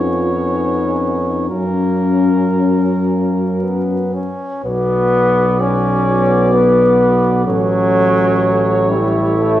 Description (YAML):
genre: classical, hymn-like piece for brass band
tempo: 38-43 BPM (dotted quarters)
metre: 6/8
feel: rubato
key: B minor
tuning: A4 = 439 Hz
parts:
  - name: warm cornet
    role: melody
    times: 0.0-9.6 s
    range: A#4 to D5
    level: -24 LUFS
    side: equal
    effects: none
  - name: mellow French horn section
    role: second line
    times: 0.0-9.6 s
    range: C#4 to A4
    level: -22 LUFS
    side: equal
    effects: none
  - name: clear trombone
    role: accompaniment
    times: 0.0-9.6 s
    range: F#3 to C#4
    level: -17 LUFS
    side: equal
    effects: none
  - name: mellow trombone section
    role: accompaniment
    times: 0.0-9.6 s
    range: B3 to E4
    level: -20 LUFS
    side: left 3 dB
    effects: none
  - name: warm tuba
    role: bass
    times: 0.0-9.6 s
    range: A1 to F#2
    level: -18 LUFS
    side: equal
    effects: none
room: moderate scoring stage reverb, RT60 1.9 s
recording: vinyl crackle, small room ambience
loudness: -13 LUFS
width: side -12 dB against mid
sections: 0.0-4.6 A section; 4.6-9.6 B section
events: none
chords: 0.0 C#7/E#; 1.5 F#; 4.6 Bm; 7.5 A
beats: | 1.50 3.08 | 4.64 6.06 | 7.46 8.89